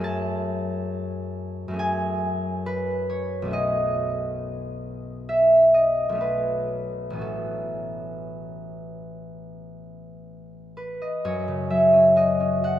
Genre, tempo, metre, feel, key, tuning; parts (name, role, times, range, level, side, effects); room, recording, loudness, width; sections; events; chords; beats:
classical, solo harp piece; 57-70 BPM; 4/4; rubato; A lydian; A4 = 440 Hz
concert harp; solo; 0.0-12.8 s; A1 to A5; -22 LUFS; equal
wet church reverb, RT60 3.2 s; -21 LUFS; side -12 dB against mid
0.0-11.3 A section; 11.3-12.8 B section
0.0 Amaj7/F#; 3.5 B9; 7.2 A69; 11.3 F#5
| 0.04 0.92 1.79 2.66 | 3.54 4.42 5.30 6.21 | 7.21 8.24 9.25 10.26 | 11.26 12.19